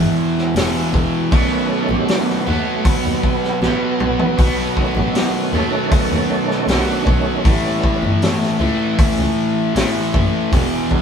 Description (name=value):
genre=blues rock power trio and southern rock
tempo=78 BPM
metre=4/4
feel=straight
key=unclear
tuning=A4 = 441 Hz
part: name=overdriven electric guitar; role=riff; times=0.0-11.0 s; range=E2 to B3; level=-18 LUFS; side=equal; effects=none
part: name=rich double bass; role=bass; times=0.0-10.6 s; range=E1 to D#2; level=-23 LUFS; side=equal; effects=none
part: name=vintage drum kit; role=drums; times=0.4-11.0 s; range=hi-hat, kick drum, snare drum, toms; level=-19 LUFS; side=equal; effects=none
part: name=overdriven tonewheel organ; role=sustained chords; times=1.3-11.0 s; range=D#3 to D5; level=-23 LUFS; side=right 4 dB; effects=chorus vibrato, fast rotary speaker
room=moderate studio reverb, RT60 0.6 s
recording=band playing live in one room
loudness=-15 LUFS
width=side -7 dB against mid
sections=0.0-11.0 A section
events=tonewheel organ solo 0.0-11.0; drum fill 3.6-4.4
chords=0.0 E5; 1.3 B7; 7.5 A7